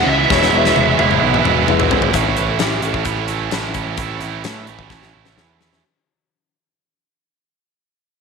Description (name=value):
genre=classic rock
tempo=130 BPM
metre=4/4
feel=straight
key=unclear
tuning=A4 = 439 Hz
part: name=lead guitar through a small cranked amp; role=melody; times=0.0-1.9 s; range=E5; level=-19 LUFS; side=right 1 dB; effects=overdrive, slapback echo
part: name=tack piano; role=accompaniment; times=0.0-2.1 s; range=E4 to E5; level=-23 LUFS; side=left 11 dB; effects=none
part: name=tonewheel organ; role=sustained chords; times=0.0-2.1 s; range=G#3 to B4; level=-25 LUFS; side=equal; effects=slow rotary speaker, overdrive, chorus vibrato
part: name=overdriven electric guitar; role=riff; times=0.0-5.8 s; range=E2 to E4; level=-18 LUFS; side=right 14 dB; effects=none
part: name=growling picked electric bass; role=bass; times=0.1-5.8 s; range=E1 to A2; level=-22 LUFS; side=equal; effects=overdrive
part: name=huge arena drum kit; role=drums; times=0.3-5.8 s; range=hi-hat, kick drum, snare drum, toms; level=-21 LUFS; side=left 6 dB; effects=none
part: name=electric slide guitar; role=second line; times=2.1-3.3 s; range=G4 to E5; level=-28 LUFS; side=left 9 dB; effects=none
room=light reverb, small room ambience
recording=1960s-style stereo with parts hard left and right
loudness=-14 LUFS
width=side -5 dB against mid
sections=0.0-2.1 A section; 2.1-5.8 B section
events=drum fill 0.3-2.1, 4.9-5.8; fade-out 2.1-5.8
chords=0.0 E; 2.1 A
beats=| 0.31 0.76 1.22 1.68 | 2.14 2.60 3.06 3.52 | 3.98 4.44 4.90 5.36